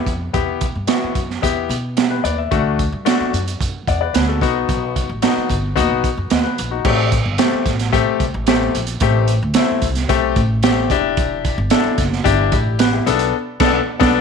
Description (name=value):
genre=uptempo 1960s-style soul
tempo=111 BPM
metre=4/4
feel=straight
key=unclear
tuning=A4 = 440 Hz
part: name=clear grand piano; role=accompaniment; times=0.0-14.2 s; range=A3 to F#5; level=-19 LUFS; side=left 12 dB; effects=none
part: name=upright bass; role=bass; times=0.0-14.2 s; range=E1 to B2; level=-21 LUFS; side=equal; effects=none
part: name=crunchy breakbeat drum kit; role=drums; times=0.1-14.2 s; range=crash cymbal, hi-hat, kick drum, snare drum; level=-19 LUFS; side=right 5 dB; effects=none
room=moderate plate reverb, RT60 1.3 s, small room reverb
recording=1960s-style stereo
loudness=-15 LUFS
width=side -6 dB against mid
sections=0.0-6.9 A section; 6.9-14.2 B section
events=band accent 13.3-14.2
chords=0.0 Em; 2.5 D; 4.4 B; 6.9 Am7; 10.9 Em7; 13.1 Bm7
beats=| 0.34 0.89 1.43 1.98 | 2.52 3.06 3.60 4.14 | 4.69 5.23 5.77 6.31 | 6.85 7.39 7.93 8.48 | 9.02 9.56 10.10 10.64 | 11.18 11.72 12.26 12.80 | 13.34 13.88